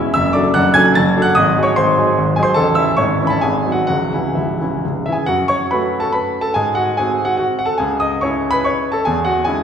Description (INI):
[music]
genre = classical, romantic triple-time dance for piano with dotted rhythms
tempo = 120-159 BPM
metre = 3/4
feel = rubato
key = C# minor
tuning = A4 = 440 Hz
[part]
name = clear baby grand piano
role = solo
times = 0.0-9.6 s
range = A0 to A6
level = -14 LUFS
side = equal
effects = none
[sound]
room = wet concert hall reverb, RT60 1.9 s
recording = heard from further back in the room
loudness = -14 LUFS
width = side -8 dB against mid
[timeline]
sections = 0.0-5.3 A section; 5.3-9.6 A section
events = none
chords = 0.2 D/F#; 1.4 G#7; 2.6 A; 3.0 C#m/G#; 3.4 G#7; 3.9 C#m; 5.3 F#m; 6.6 G#7; 7.8 C#m; 9.1 C#m/E